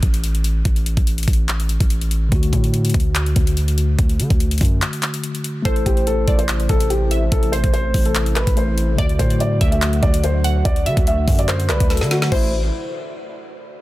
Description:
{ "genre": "hip hop, trap", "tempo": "144 BPM", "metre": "4/4", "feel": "half-time", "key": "A dorian", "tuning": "A4 = 440 Hz", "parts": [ { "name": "long sustained 808-style bass", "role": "bass", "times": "0.0-12.7 s", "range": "A1 to D3", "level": "-20 LUFS", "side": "equal", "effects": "none" }, { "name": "trap drum kit", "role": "drums", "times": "0.0-12.4 s", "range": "crash cymbal, handclaps, hi-hat, kick drum, snare drum", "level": "-19 LUFS", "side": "equal", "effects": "none" }, { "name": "mellow tine electric piano", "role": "accompaniment", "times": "2.3-12.5 s", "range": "D3 to C5", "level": "-25 LUFS", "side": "left 2 dB", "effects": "slow stereo tremolo" }, { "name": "dark concert grand piano", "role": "melody", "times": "5.6-12.5 s", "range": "E4 to E5", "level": "-24 LUFS", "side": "left 1 dB", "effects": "tape echo" }, { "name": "glassy wavetable pluck", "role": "second line", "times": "5.7-12.5 s", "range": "C5 to F#5", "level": "-30 LUFS", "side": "right 2 dB", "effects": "chorus, phaser, tape echo" }, { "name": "dark analog pad", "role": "sustained chords", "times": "5.7-12.5 s", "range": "C3 to F#4", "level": "-29 LUFS", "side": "right 1 dB", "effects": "chorus" } ], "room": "little or no reverb", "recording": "dense, heavily limited modern master", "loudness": "-16 LUFS", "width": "side -17 dB against mid", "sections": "0.0-5.7 A section; 5.7-12.3 B section; 12.3-13.8 C section", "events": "break 0.0-2.3, 4.8-5.7; drum fill 11.9-12.3", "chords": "0.0 N.C.; 2.3 D; 5.7 Am; 9.0 D; 12.3 Am" }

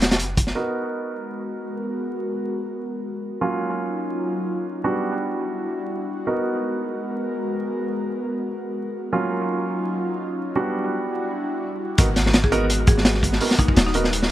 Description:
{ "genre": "drum and bass, jungle", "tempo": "168 BPM", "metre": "4/4", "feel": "swing 54% on 16ths", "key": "G# minor", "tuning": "A4 = 440 Hz", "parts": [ { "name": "warm 808-style bass", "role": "bass", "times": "0.0-0.5, 12.0-14.3 s", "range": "D#1 to G#1", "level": "-23 LUFS", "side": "equal", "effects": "none" }, { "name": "crunchy breakbeat drum kit", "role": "drums", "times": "0.0-0.5, 12.0-14.3 s", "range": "hi-hat, kick drum, snare drum", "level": "-18 LUFS", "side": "equal", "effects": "none" }, { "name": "airy breathy pad", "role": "sustained chords", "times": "0.6-14.3 s", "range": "F#3 to A#4", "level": "-27 LUFS", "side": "left 1 dB", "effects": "chorus" }, { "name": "warm grand piano", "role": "stabs", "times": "0.6-14.0 s", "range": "F#3 to A#4", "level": "-26 LUFS", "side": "right 2 dB", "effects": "vintage 12-bit sampler grit, low-pass filter, dub echo" }, { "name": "impact", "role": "sound effects", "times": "12.1-13.4 s", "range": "none", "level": "-33 LUFS", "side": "equal", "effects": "none" }, { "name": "buzzing marimba with medium mallets", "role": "melody", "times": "12.4-14.2 s", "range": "D#4 to G#4", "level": "-29 LUFS", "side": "left 2 dB", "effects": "vintage 12-bit sampler grit, dub echo" } ], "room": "light reverb, studio reverb", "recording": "vinyl crackle", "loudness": "-21 LUFS", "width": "side -13 dB against mid", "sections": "0.6-12.0 A section; 12.0-14.3 B section", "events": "filter sweep on analog synth pad 0.6-12.0; drop 12.0-14.3; impact 12.0-13.4", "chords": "0.0 Esus2; 0.6 G#m9; 3.4 D#m9; 4.8 Em9; 6.3 G#m9; 9.1 D#m9; 10.6 Em9; 12.0 G#m9" }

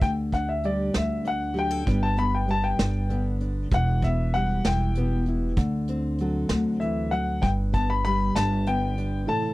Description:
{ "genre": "acoustic folk duo or small band", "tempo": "65 BPM (dotted quarters)", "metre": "6/8", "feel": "straight", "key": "G major", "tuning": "A4 = 440 Hz", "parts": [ { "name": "warm upright piano", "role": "melody", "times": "0.0-9.5 s", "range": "D5 to B5", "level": "-28 LUFS", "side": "left 3 dB", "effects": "none" }, { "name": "fingerpicked steel-string acoustic guitar", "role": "accompaniment", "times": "0.0-9.5 s", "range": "G2 to B4", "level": "-28 LUFS", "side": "equal", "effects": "none" }, { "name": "upright bass", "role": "bass", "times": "0.0-9.2 s", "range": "E1 to D2", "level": "-26 LUFS", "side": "equal", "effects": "none" }, { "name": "vintage brush drum kit", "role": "drums", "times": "0.0-9.1 s", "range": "hi-hat, kick drum, snare drum", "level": "-25 LUFS", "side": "right 1 dB", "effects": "none" }, { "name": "mellow tonewheel organ", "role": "sustained chords", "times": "9.3-9.5 s", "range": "C3 to E4", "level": "-29 LUFS", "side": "right 4 dB", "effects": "slow rotary speaker" } ], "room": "little or no reverb", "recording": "dry, close 1970s-style studio recording", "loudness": "-22 LUFS", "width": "side -18 dB against mid", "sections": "0.0-9.3 A section", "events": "upright piano solo 0.0-9.3", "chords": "0.0 Dsus4; 0.9 D; 1.9 G; 3.7 Em; 5.6 D7; 7.4 G" }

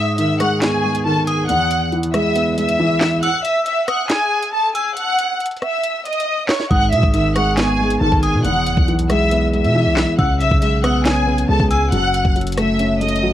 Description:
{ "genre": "hip hop, drill", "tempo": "138 BPM", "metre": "4/4", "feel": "half-time", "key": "unclear", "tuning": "A4 = 441 Hz", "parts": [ { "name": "rich studio violin section", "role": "melody", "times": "0.0-13.3 s", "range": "G#4 to F#6", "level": "-19 LUFS", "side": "equal", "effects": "cassette tape" }, { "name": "metallic FM bell", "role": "second line", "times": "0.0-11.9 s", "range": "C#6 to E6", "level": "-27 LUFS", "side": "left 3 dB", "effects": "chorus, cassette tape, analog delay" }, { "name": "dark concert grand piano", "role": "accompaniment", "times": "0.0-3.3, 6.7-13.3 s", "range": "E2 to C#4", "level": "-18 LUFS", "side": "equal", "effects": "cassette tape" }, { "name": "drill drum kit", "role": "drums", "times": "0.2-13.2 s", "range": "handclaps, hi-hat, kick drum, rim click, snare drum", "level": "-20 LUFS", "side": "equal", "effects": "cassette tape" }, { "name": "long sustained 808-style bass", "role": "bass", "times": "6.7-13.3 s", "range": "E1 to B2", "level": "-20 LUFS", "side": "equal", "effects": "none" } ], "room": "moderate booth ambience, RT60 0.2 s", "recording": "home recording on cassette", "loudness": "-15 LUFS", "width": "side -12 dB against mid", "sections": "0.0-13.3 A section", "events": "break 0.0-6.7", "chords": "0.0 G#m; 1.5 E; 3.2 F#m9; 5.0 F#5; 6.7 G#m; 8.4 E; 10.2 C#m7; 11.9 F#m" }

